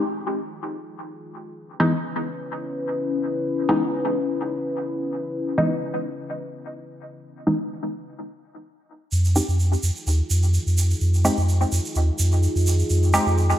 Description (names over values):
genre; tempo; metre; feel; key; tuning
dub techno; 127 BPM; 4/4; swing 54% on 16ths; unclear; A4 = 444 Hz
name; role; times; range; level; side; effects
dark analog pad; sustained chords; 0.5-13.6 s; Db4 to Cb5; -29 LUFS; left 2 dB; chorus, phaser
filtered dub chord stab; stabs; 0.0-13.3 s; Fb3 to G4; -24 LUFS; equal; chorus, phaser, dub echo
warm sub bass; bass; 9.1-13.5 s; Eb2 to F2; -19 LUFS; equal; none
tube shaker; percussion; 9.1-13.6 s; none; -30 LUFS; right 4 dB; none
room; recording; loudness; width
moderate echo chamber reverb, RT60 1.6 s; dark, warm production; -20 LUFS; side -12 dB against mid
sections
0.0-9.1 A section; 9.1-13.6 B section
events
break 8.2-9.1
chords
0.0 Fm7; 1.6 Dbm7; 9.1 Fm7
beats
0.14 0.62 1.09 | 1.56 2.04 2.51 2.98 | 3.45 3.92 4.40 4.87 | 5.34 5.81 6.29 6.76 | 7.23 7.70 8.18 8.65 | 9.12 9.59 10.07 10.54 | 11.01 11.48 11.96 12.43 | 12.90 13.37